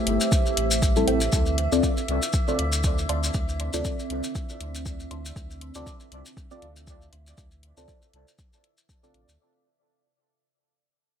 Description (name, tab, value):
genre	dub techno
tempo	119 BPM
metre	4/4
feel	swing 56% on 16ths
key	unclear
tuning	A4 = 441 Hz
part	deep dark ambient pad	sustained chords	0.0-9.4 s	A3 to D5	-33 LUFS	equal	chorus, built-in reverb, sidechain pumping
part	metallic inharmonic drone	texture	0.0-9.4 s	E3 to E5	-33 LUFS	right 2 dB	chorus, built-in reverb, sidechain pumping
part	warm sub bass	bass	0.1-9.4 s	G1 to D2	-29 LUFS	equal	tube saturation, sidechain pumping
part	electronic hi-hat	drums	0.1-9.3 s	none	-30 LUFS	left 4 dB	overdrive
part	maracas	percussion	0.2-9.4 s	none	-30 LUFS	left 3 dB	none
part	electronic kick drum	drums	0.3-9.0 s	none	-26 LUFS	equal	overdrive
part	deep mellow chord stab	stabs	1.0-9.3 s	G3 to D5	-28 LUFS	left 2 dB	chorus, phaser, dub echo
part	filtered dub chord stab	riff	1.1-9.3 s	A4 to C6	-34 LUFS	right 6 dB	phaser, sidechain pumping, dub echo
room	light reverb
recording	bright 1980s-style digital production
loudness	-22 LUFS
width	side -8 dB against mid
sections	0.0-9.4 A section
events	fade-out 0.0-9.4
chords	0.0 Am7; 1.3 Dm7